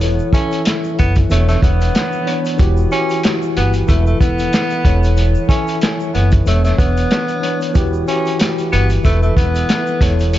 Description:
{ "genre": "hip hop, boom-bap hip-hop", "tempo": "93 BPM", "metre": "4/4", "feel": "swing 55% on 16ths", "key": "E dorian", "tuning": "A4 = 439 Hz", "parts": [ { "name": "mellow tine electric piano", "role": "accompaniment", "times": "0.0-10.4 s", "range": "E3 to E5", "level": "-20 LUFS", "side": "left 1 dB", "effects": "medium stereo tremolo, high-pass filter, low-pass filter, tape echo" }, { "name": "upright bass", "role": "bass", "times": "0.0-10.4 s", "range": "E1 to G1", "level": "-15 LUFS", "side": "equal", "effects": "none" }, { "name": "vintage drum kit", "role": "drums", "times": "0.0-10.4 s", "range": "hi-hat, kick drum, rim click, snare drum", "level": "-17 LUFS", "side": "equal", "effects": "none" }, { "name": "egg shaker", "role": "percussion", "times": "0.0-10.4 s", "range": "none", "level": "-45 LUFS", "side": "left 5 dB", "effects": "none" }, { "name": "mellow tenor saxophone", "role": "melody", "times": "0.3-10.3 s", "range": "A3 to C#4", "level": "-21 LUFS", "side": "equal", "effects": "high-pass filter, low-pass filter, tape echo" } ], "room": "light reverb, studio ambience", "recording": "echo-heavy mix, nothing above 7.6 kHz", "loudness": "-13 LUFS", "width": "side -14 dB against mid", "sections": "0.0-10.4 A section", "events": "none", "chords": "0.0 F#m7/E; 1.3 Bmadd9/E; 2.6 Emadd9; 3.9 Asus2/E; 4.9 F#m7/E; 6.5 Bmadd9/E; 7.8 Emadd9; 9.0 Asus2/E", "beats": "| 0.01 0.66 1.30 1.95 | 2.59 3.24 3.88 4.53 | 5.17 5.82 6.46 7.11 | 7.75 8.40 9.05 9.69 | 10.34" }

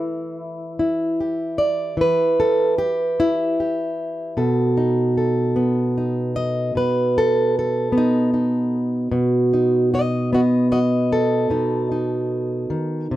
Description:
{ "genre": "acoustic country blues, solo or duo", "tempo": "50 BPM (dotted quarters)", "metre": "12/8", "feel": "straight", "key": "unclear", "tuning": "A4 = 440 Hz", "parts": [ { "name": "fingerpicked plugged-in steel-string acoustic guitar", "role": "solo", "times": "0.0-13.2 s", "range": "B2 to D#5", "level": "-18 LUFS", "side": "equal", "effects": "none" } ], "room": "little or no reverb", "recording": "dry, close 1970s-style studio recording", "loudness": "-18 LUFS", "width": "side -14 dB against mid", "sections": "0.0-13.2 A section", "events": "none", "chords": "0.0 Em; 4.4 B7", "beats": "0.79 1.98 3.18 | 4.37 5.56 6.75 7.95 | 9.13 10.32 11.51 12.70" }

